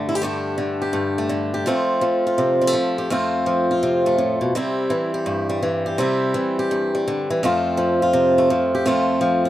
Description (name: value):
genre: country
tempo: 167 BPM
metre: 4/4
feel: swing 64% on 8ths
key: unclear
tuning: A4 = 440 Hz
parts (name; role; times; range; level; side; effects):
- picked swing-style acoustic guitar; solo; 0.0-9.5 s; F2 to G4; -18 LUFS; equal; none
room: light reverb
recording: dark, warm production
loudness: -18 LUFS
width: side -13 dB against mid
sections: 0.0-9.5 A section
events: none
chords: 0.0 Gsus2; 1.7 F; 4.5 C; 7.4 F